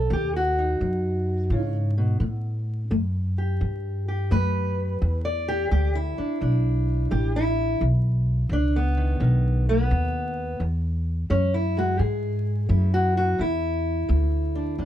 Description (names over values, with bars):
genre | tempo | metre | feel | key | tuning
acoustic country blues, solo or duo | 86 BPM | 4/4 | swing 66% on 8ths | unclear | A4 = 440 Hz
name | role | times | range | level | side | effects
fingerpicked steel-string acoustic guitar | melody | 0.0-14.9 s | E2 to D5 | -26 LUFS | equal | none
upright bass | bass | 0.0-14.9 s | A1 to A2 | -23 LUFS | equal | none
room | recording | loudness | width
light reverb | close, detailed microphones, vinyl crackle | -22 LUFS | side -11 dB against mid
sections
0.0-10.6 A section; 10.6-14.9 B section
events
steel-string acoustic guitar solo 10.6-14.9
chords
0.0 B; 2.2 A5; 5.0 E7; 7.8 B; 10.6 E7